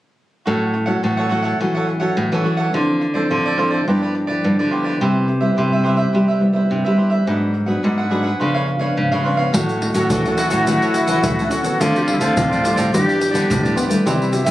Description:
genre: samba and choro.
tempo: 106 BPM.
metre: 4/4.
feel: straight.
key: unclear.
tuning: A4 = 441 Hz.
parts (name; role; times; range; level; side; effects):
cavaquinho; accompaniment; 0.5-14.5 s; D4 to F#5; -23 LUFS; right 3 dB; none.
nylon-string guitar; accompaniment; 0.5-14.5 s; G2 to E4; -22 LUFS; left 1 dB; none.
nylon-string guitar; bass; 0.5-14.5 s; G2 to A3; -20 LUFS; equal; none.
dark trombone; melody; 9.3-14.5 s; E3 to E4; -23 LUFS; left 1 dB; none.
bright reedy wooden flute; second line; 9.5-14.5 s; E4 to G4; -21 LUFS; left 1 dB; none.
egg shaker, surdo and pandeiro; percussion; 9.5-14.5 s; none; -23 LUFS; equal; none.
room: light reverb.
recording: recorded on a phone in the room, studio ambience.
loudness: -16 LUFS.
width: side -15 dB against mid.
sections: 0.5-9.5 A section; 9.5-14.5 B section.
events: none.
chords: 0.5 A6; 2.7 Dm9; 3.9 G6; 5.0 Cmaj7; 7.3 G#m7b5; 8.4 C#7b9; 9.5 A6; 11.8 Dm9; 12.9 G13.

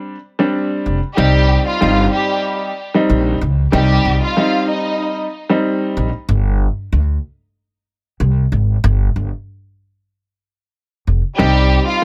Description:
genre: hip hop, boom-bap hip-hop.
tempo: 94 BPM.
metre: 4/4.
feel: swing 55% on 16ths.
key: C minor.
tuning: A4 = 440 Hz.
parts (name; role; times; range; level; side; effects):
warm grand piano; accompaniment; 0.0-6.1, 11.4-12.0 s; G3 to Eb4; -20 LUFS; equal; cassette tape, high-pass filter, low-pass filter.
upright bass; bass; 0.9-11.8 s; F1 to D2; -17 LUFS; equal; none.
warm studio violin section; melody; 1.2-5.1, 11.4-12.0 s; G3 to F5; -21 LUFS; equal; high-pass filter, low-pass filter, digital delay.
room: moderate small room reverb, RT60 0.5 s.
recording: none.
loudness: -16 LUFS.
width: mono.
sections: 0.0-1.2 A section; 1.2-12.0 B section.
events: break 6.3-11.4.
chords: 0.0 Gsus4; 1.2 Cm; 6.3 Gsus4; 11.4 Cm.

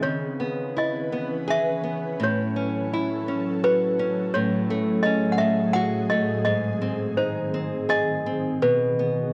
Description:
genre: children's music, lullaby.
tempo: 84 BPM.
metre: 3/4.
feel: rubato.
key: C# minor.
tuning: A4 = 440 Hz.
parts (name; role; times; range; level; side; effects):
toy piano; melody; 0.0-9.3 s; B4 to F#5; -27 LUFS; equal; none.
nylon-string guitar; accompaniment; 0.0-9.3 s; G#2 to G#4; -29 LUFS; equal; none.
ethereal airy pad; sustained chords; 0.0-9.3 s; A2 to B4; -30 LUFS; equal; ensemble chorus, built-in reverb.
room: moderate echo chamber reverb, RT60 1.5 s, studio reverb.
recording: none.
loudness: -24 LUFS.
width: mono.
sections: 0.0-9.3 A section.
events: none.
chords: 0.0 C#m7; 2.2 A6; 4.3 F#madd9/A; 6.5 G#; 8.6 Bsus4.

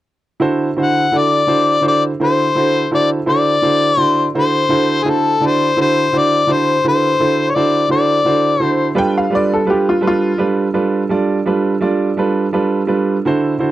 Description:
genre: blues.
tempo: 56 BPM (dotted quarters).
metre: 12/8.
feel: straight.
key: D mixolydian.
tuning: A4 = 440 Hz.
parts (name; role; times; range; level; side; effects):
clear grand piano; accompaniment; 0.4-13.7 s; D3 to D5; -15 LUFS; right 3 dB; none.
clear harmonica; melody; 0.8-8.9 s; G#4 to F#5; -14 LUFS; left 3 dB; overdrive.
bright upright piano; second line; 9.0-10.4 s; F4 to G5; -16 LUFS; equal; none.
room: light reverb.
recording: dry, close 1970s-style studio recording.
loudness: -13 LUFS.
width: side -14 dB against mid.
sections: 0.4-13.7 A section.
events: none.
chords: 0.4 D9; 9.0 G9.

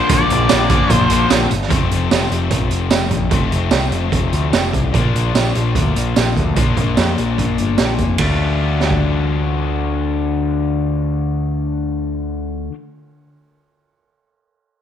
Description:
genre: classic rock.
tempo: 148 BPM.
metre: 4/4.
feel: straight.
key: D minor.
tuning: A4 = 440 Hz.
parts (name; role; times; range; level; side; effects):
octave-fuzz lead guitar; melody; 0.0-1.3 s; C5 to D5; -19 LUFS; left 2 dB; distortion, slapback echo.
cranked stack guitar; riff; 0.0-12.8 s; F2 to F4; -21 LUFS; left 9 dB; overdrive.
cranked stack guitar; riff; 0.0-1.5 s; Bb2 to Bb3; -20 LUFS; left 1 dB; overdrive.
growling picked electric bass; bass; 0.1-12.7 s; F1 to F2; -19 LUFS; equal; overdrive.
raw garage drum kit; drums; 0.1-9.0 s; hi-hat, kick drum, ride cymbal, snare drum, tambourine; -18 LUFS; right 4 dB; none.
room: moderate echo chamber reverb, RT60 1.4 s, studio reverb.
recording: 1960s-style stereo.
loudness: -14 LUFS.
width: side -9 dB against mid.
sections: 0.0-1.7 A section; 1.7-8.2 B section; 8.2-11.5 C section.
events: none.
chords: 0.0 Bb; 1.7 F; 4.9 Bb; 8.2 Dm.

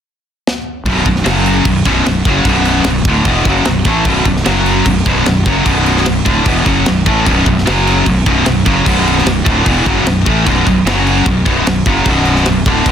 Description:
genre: heavy metal.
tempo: 150 BPM.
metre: 4/4.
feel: straight.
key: B minor.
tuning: A4 = 440 Hz.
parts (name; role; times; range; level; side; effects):
tight metal drum kit; drums; 0.5-12.9 s; crash cymbal, kick drum, snare drum; -16 LUFS; equal; none.
high-gain distorted guitar; riff; 0.9-12.9 s; B1 to A3; -12 LUFS; equal; distortion.
fuzz fingered electric bass; bass; 0.9-12.9 s; B0 to A1; -17 LUFS; equal; overdrive.
room: little or no reverb.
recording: dense, heavily limited modern master.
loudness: -10 LUFS.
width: side -8 dB against mid.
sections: 0.9-12.9 A section.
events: drum fill 0.5-0.9.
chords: 0.0 N.C.; 0.9 B5; 1.3 F#5; 1.7 Bm; 4.5 F#5; 4.9 Bm; 7.7 F#5; 8.1 Bm; 10.9 F#5; 11.3 Bm.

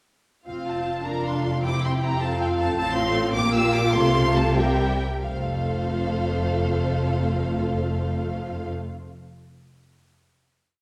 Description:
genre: quick classical-period movement for string orchestra.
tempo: 88-106 BPM (dotted quarters).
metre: 6/8.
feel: straight.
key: F major.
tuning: A4 = 440 Hz.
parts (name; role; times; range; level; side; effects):
warm symphonic violin section; melody; 0.5-8.7 s; F5 to E6; -32 LUFS; equal; none.
warm symphonic violin section; second line; 0.5-8.7 s; F4 to G5; -32 LUFS; equal; none.
warm symphonic viola section; accompaniment; 0.5-8.7 s; G3 to G4; -30 LUFS; equal; none.
warm symphonic cello section; bass; 0.5-8.7 s; F2 to C3; -31 LUFS; equal; none.
warm symphonic double bass section; bass; 0.5-8.7 s; F1 to C2; -30 LUFS; equal; none.
room: wet recital hall reverb, RT60 1.6 s.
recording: recorded in a church or concert hall.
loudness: -24 LUFS.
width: mono.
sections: 0.5-5.2 A section; 5.2-7.9 final chord.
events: slowing down 2.2-5.2.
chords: 0.5 F; 1.1 Bb/F; 1.6 C/F; 2.2 F; 2.8 F/A; 3.4 Gm7/Bb; 4.0 F/C; 4.6 C7; 5.2 F.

